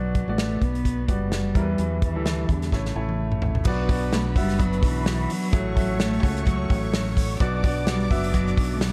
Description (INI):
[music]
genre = piano-driven pop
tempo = 128 BPM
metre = 4/4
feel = swing 56% on 16ths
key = B minor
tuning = A4 = 440 Hz
[part]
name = dark cello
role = melody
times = 0.0-8.9 s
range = C#3 to B3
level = -31 LUFS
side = equal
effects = none
[part]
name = bright upright piano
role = accompaniment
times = 0.0-8.9 s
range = A2 to E5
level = -34 LUFS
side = equal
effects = none
[part]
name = fingered electric bass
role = bass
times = 0.0-8.9 s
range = F#1 to E2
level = -30 LUFS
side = equal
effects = none
[part]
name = natural country drum kit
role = drums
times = 0.1-8.9 s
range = crash cymbal, hi-hat, kick drum, snare drum, toms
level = -27 LUFS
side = equal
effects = none
[part]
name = picked steel-string acoustic guitar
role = riff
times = 3.6-8.9 s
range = A2 to F#4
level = -32 LUFS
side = equal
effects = none
[part]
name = warm studio violin section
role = second line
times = 3.7-8.9 s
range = B4 to D6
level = -36 LUFS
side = equal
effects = none
[sound]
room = light reverb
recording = dark, warm production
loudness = -24 LUFS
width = mono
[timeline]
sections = 0.0-3.7 A section; 3.7-8.9 B section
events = drum fill 2.7-3.7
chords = 0.0 Bm; 1.6 Em; 2.7 A; 3.7 Bm; 5.5 F#m/A; 7.4 Bm